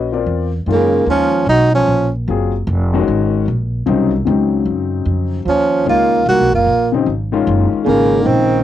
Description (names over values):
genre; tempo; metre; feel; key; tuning
modal jazz; 150 BPM; 3/4; swing 64% on 8ths; Eb dorian; A4 = 442 Hz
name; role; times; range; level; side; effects
warm concert grand piano; accompaniment; 0.0-8.6 s; Db3 to Eb5; -18 LUFS; left 8 dB; cassette tape
upright bass; bass; 0.0-8.6 s; F1 to Gb2; -18 LUFS; right 1 dB; none
warm tenor saxophone; melody; 0.7-2.1, 5.5-8.6 s; Bb3 to Gb4; -14 LUFS; equal; none
bright trombone; second line; 0.7-2.1, 5.5-8.6 s; Db3 to Bb3; -17 LUFS; right 8 dB; cassette tape
room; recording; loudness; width
moderate booth ambience, RT60 0.2 s; home recording on cassette; -13 LUFS; side -12 dB against mid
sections
0.7-8.6 A section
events
none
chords
0.0 Bb; 0.7 Ebm9; 3.1 Dbsus2; 5.5 Ebm9; 7.9 Dbsus2